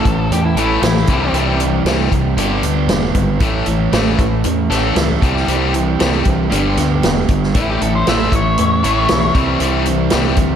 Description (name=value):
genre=classic rock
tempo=116 BPM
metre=4/4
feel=straight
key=unclear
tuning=A4 = 440 Hz
part: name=octave-fuzz lead guitar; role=second line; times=0.0-1.3, 7.6-9.3 s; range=E4 to E5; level=-20 LUFS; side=left 3 dB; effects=distortion, tape echo, slapback echo
part: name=cranked stack guitar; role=riff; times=0.0-10.6 s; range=G2 to A3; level=-19 LUFS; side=left 8 dB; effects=overdrive
part: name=overdriven electric guitar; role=riff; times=0.0-10.6 s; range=G2 to A4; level=-19 LUFS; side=right 8 dB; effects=spring reverb, slapback echo
part: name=growling fingered electric bass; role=bass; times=0.0-10.6 s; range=E1 to E2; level=-20 LUFS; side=equal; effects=overdrive
part: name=vintage drum kit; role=drums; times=0.1-10.5 s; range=hi-hat, kick drum, snare drum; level=-19 LUFS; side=equal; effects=none
room=moderate concert hall reverb, RT60 2.0 s, studio ambience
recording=big arena sound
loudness=-13 LUFS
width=side -8 dB against mid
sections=0.0-10.6 A section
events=none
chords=0.0 A; 1.1 C; 2.4 G; 3.4 A; 5.2 C; 6.5 G; 7.5 A; 9.4 C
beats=0.32 0.84 | 1.35 1.87 2.39 2.90 | 3.42 3.94 4.46 4.97 | 5.49 6.00 6.52 7.04 | 7.55 8.06 8.58 9.10 | 9.61 10.12